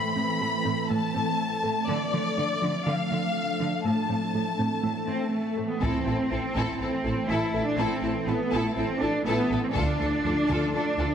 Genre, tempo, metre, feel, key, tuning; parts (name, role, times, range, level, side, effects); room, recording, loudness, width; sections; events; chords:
cinematic, hybrid orchestral and electronic film score; 122 BPM; 4/4; straight; A minor; A4 = 441 Hz
warm symphonic violin section; melody; 0.0-11.1 s; D5 to B5; -31 LUFS; left 3 dB
ethereal airy pad; sustained chords; 0.0-11.1 s; E3 to A4; -31 LUFS; right 1 dB; ensemble chorus, built-in reverb
thumb-piano-like synth pluck; arpeggios; 0.0-11.1 s; D3 to A4; -33 LUFS; equal; chorus, digital delay
rich symphonic cello section; bass; 0.2-11.1 s; A2 to E4; -29 LUFS; right 1 dB
warm symphonic violin section; second line; 5.8-11.1 s; A4; -34 LUFS; left 2 dB
warm symphonic viola section; accompaniment; 5.8-11.1 s; E4 to F4; -34 LUFS; left 1 dB
clear symphonic double bass section; bass; 5.8-11.1 s; A1 to D2; -32 LUFS; right 2 dB
taiko ensemble; drums; 5.8-6.8, 9.8-10.7 s; -33 LUFS; equal
wet concert hall reverb, RT60 2.3 s; -24 LUFS; side -8 dB against mid
0.0-5.8 A section; 5.8-11.1 B section
0.0 Am; 1.9 Dm; 3.9 Am; 9.8 Dm